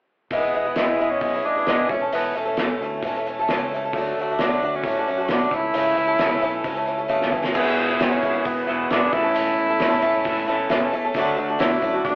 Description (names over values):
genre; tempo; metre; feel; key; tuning
folk rock and heartland rock; 133 BPM; 4/4; straight; E mixolydian; A4 = 440 Hz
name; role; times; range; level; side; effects
clear tenor saxophone; melody; 0.3-12.2 s; A3 to E4; -23 LUFS; equal; none
picked swing-style acoustic guitar; accompaniment; 0.3-12.2 s; C#3 to A4; -23 LUFS; equal; none
fingered electric bass; bass; 0.3-12.2 s; E1 to A2; -37 LUFS; equal; none
cloth-damped thuddy drum kit; drums; 0.3-12.2 s; crash cymbal, hi-hat, kick drum, snare drum, toms; -26 LUFS; equal; none
electric guitar through a small old amp; riff; 7.5-12.2 s; E2 to F#4; -26 LUFS; equal; none
room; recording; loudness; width
moderate studio reverb, RT60 0.8 s; band playing live in one room, telephone sound; -19 LUFS; side -26 dB against mid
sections
0.3-7.6 A section; 7.6-12.2 B section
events
drum fill 7.1-7.6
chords
0.3 E; 1.9 A/E; 3.9 D; 5.5 A; 7.6 E; 9.1 A/E; 11.2 D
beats
| 0.31 0.77 1.22 1.67 | 2.13 2.58 3.03 3.48 | 3.94 4.39 4.84 5.29 | 5.75 6.20 6.65 7.10 | 7.56 8.01 8.46 8.91 | 9.36 9.81 10.26 10.71 | 11.16 11.61 12.06